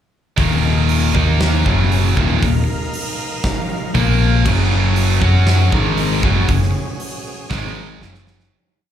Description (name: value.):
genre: hard rock.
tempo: 118 BPM.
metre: 4/4.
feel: straight.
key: Eb minor.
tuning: A4 = 440 Hz.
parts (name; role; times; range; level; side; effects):
overdriven tonewheel organ; sustained chords; 0.4-8.5 s; Gb3 to F5; -28 LUFS; right 1 dB; chorus vibrato, lush chorus.
crunchy overdriven guitar; riff; 0.4-8.5 s; Eb2 to Gb4; -22 LUFS; left 11 dB; none.
heavy high-gain guitar; riff; 0.4-8.5 s; Eb2 to Gb4; -21 LUFS; right 12 dB; distortion, slapback echo.
fingered electric bass; bass; 0.4-8.5 s; Eb1 to Gb2; -16 LUFS; equal; none.
huge arena drum kit; drums; 0.4-8.5 s; crash cymbal, hi-hat, kick drum, snare drum; -21 LUFS; equal; none.
room: small room ambience.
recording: live gig heard through the venue's PA, club reverb.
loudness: -14 LUFS.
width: side -10 dB against mid.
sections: 0.4-8.5 riff.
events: fade-out 6.5-8.5; drum fill 8.0-8.5.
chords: 0.4 Eb5; 1.7 Gb5; 2.2 Eb5; 3.9 Bb5; 4.5 Gb5; 5.7 Ab5; 6.2 Gb5; 7.5 Ab5; 8.0 Gb5.